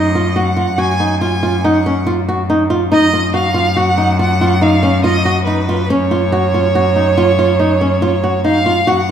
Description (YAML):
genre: contemporary instrumental, chamber music in an uneven meter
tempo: 141 BPM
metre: 7/4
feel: straight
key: unclear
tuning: A4 = 440 Hz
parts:
  - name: rich violin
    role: melody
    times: 0.0-9.1 s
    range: B4 to G#5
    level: -17 LUFS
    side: right 3 dB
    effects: none
  - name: flamenco guitar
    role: arpeggios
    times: 0.0-9.0 s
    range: C#4 to F#4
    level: -15 LUFS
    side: right 1 dB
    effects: none
  - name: bright cello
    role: bass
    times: 0.0-9.1 s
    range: F#2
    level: -17 LUFS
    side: left 1 dB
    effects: none
room: moderate recital hall reverb, RT60 1.7 s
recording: none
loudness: -12 LUFS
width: side -8 dB against mid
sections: 0.0-8.9 A section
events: none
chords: 0.0 F#5